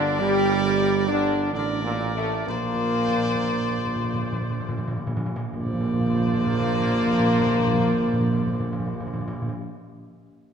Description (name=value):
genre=classical, ceremonial fanfare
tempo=54-69 BPM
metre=3/4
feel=straight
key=Bb major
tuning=A4 = 441 Hz
part: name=warm trumpet section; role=melody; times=0.0-9.5 s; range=Bb4 to D5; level=-30 LUFS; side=left 1 dB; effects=none
part: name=mellow French horn section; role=sustained chords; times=0.0-9.5 s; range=A3 to G4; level=-25 LUFS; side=left 2 dB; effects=none
part: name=warm trombone section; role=sustained chords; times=0.0-9.5 s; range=A2 to G3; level=-30 LUFS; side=right 7 dB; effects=none
part: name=mellow tuba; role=bass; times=0.0-9.5 s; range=G1 to Bb1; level=-28 LUFS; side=right 5 dB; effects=none
part: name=timpani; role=percussion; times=2.5-9.6 s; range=Bb2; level=-28 LUFS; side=equal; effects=none
room=wet scoring stage reverb, RT60 1.7 s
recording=none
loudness=-21 LUFS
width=side -7 dB against mid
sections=0.0-5.5 A section; 5.5-8.8 B section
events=slowing down 0.0-5.5; timpani fill 2.5-5.5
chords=0.0 Gm; 2.5 Bbadd9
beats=0.65 1.54 | 2.48 3.46 4.46 | 5.54 6.61 7.67